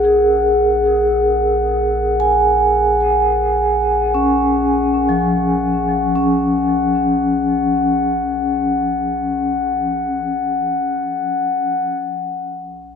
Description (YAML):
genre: ambient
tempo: free time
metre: none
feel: none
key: unclear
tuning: A4 = 441 Hz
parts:
  - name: vibraphone with medium mallets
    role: arpeggios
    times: 0.0-12.0 s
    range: F3 to Ab5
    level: -16 LUFS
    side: equal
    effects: dub echo
  - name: deep rumbling drone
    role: bass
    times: 0.0-13.0 s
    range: Bb1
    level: -28 LUFS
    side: right 2 dB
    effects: built-in reverb, phaser
  - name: glass harmonica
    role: texture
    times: 0.0-12.0 s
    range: Gb5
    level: -20 LUFS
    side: left 4 dB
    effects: stereo widening
room: wet plate reverb, RT60 2.4 s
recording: echo-heavy mix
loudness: -15 LUFS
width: side -6 dB against mid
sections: 0.0-11.9 A section; 11.9-13.0 B section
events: fade-out on synth drone 0.0-11.9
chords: 0.0 Gbsus2/Bb; 11.9 N.C.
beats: free time